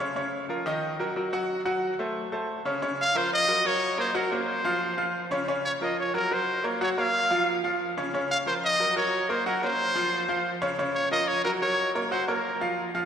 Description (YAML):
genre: latin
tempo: 181 BPM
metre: 4/4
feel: straight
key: unclear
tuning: A4 = 440 Hz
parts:
  - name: bright grand piano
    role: accompaniment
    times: 0.0-13.1 s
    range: Db3 to Gb5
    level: -27 LUFS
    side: equal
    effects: none
  - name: bright trumpet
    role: melody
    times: 3.0-12.7 s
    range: Bb4 to F5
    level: -26 LUFS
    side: equal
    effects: none
room: wet church reverb, RT60 3.2 s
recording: recorded in a church or concert hall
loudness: -24 LUFS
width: side -8 dB against mid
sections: 0.0-2.8 A section; 2.8-13.1 B section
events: none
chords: 0.2 Bbm; 0.8 Ebm; 1.5 F#dim; 2.2 Am; 2.8 Bbm; 3.5 Gb6; 4.1 Gb; 4.8 F5; 5.5 Bbm; 6.1 Gb; 7.5 Db; 8.1 Bbm; 8.8 Gb6; 9.5 Gb; 10.1 F5; 10.8 Bbm; 11.4 Gb